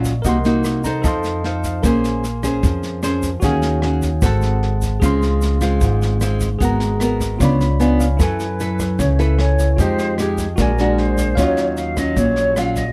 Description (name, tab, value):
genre	bossa nova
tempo	151 BPM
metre	4/4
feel	straight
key	Db major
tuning	A4 = 441 Hz
part	bell-like tine electric piano	accompaniment	0.0-12.9 s	Db4 to Db6	-28 LUFS	equal	none
part	nylon-string guitar	accompaniment	0.0-12.9 s	Ab2 to C5	-22 LUFS	equal	none
part	upright bass	bass	0.0-12.9 s	Ab1 to Gb2	-22 LUFS	equal	none
part	jazz brush drum kit	drums	0.0-12.8 s	kick drum, rim click, snare drum	-27 LUFS	equal	none
part	egg shaker	percussion	0.0-12.9 s	none	-39 LUFS	equal	none
part	mellow concert flute	second line	8.2-12.9 s	Ab4 to F5	-25 LUFS	equal	none
room	little or no reverb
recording	close, detailed microphones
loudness	-18 LUFS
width	mono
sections	0.0-12.9 A section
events	tine electric piano fill 0.6-1.8, 7.4-8.2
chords	0.2 Cm7b5; 1.0 F7; 1.8 Bbm9; 3.4 Ebm11; 4.2 Ab7b9; 5.0 Dbmaj7; 6.6 Abm9; 7.4 Db7b9; 8.2 Gbm11; 9.8 Fm9; 10.6 Bb7b13; 11.4 Ebm9